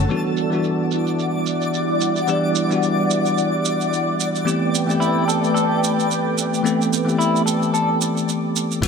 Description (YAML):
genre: sunset chillout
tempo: 110 BPM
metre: 4/4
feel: swing 56% on 16ths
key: E minor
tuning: A4 = 440 Hz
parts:
  - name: bell-like tine electric piano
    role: accompaniment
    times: 0.0-8.9 s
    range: D3 to A4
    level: -21 LUFS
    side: equal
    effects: auto-pan, low-pass filter, ping-pong delay
  - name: airy breathy pad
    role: sustained chords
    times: 0.0-8.8 s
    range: G3 to G5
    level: -24 LUFS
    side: left 1 dB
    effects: chorus, phaser
  - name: overdriven fingered electric bass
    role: bass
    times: 0.0, 8.8-8.9 s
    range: E1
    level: -22 LUFS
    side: equal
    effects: none
  - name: twinkling granular texture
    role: texture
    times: 0.0-8.8 s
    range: A4 to D6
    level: -26 LUFS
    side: left 2 dB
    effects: built-in reverb
  - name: deep house drum kit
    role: drums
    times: 0.1-8.9 s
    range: crash cymbal, hi-hat, shaker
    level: -28 LUFS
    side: right 8 dB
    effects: low-pass filter on hats, low-pass filter on perc, low-pass filter on snare, low-pass filter on cymbals, low-pass filter on room
  - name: semi-hollow electric guitar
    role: arpeggios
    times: 5.0-8.0 s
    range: E4 to A4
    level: -24 LUFS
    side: left 2 dB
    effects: wide subtle chorus, ping-pong delay
  - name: electronic kick drum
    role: drums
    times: 8.8-8.9 s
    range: none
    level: -21 LUFS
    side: equal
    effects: none
room: wet lush hall reverb, RT60 2.3 s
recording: none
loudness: -17 LUFS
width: side -6 dB against mid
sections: 0.1-8.8 A section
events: filter sweep on tine electric piano 0.1-8.8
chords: 0.1 Em9; 4.5 Am9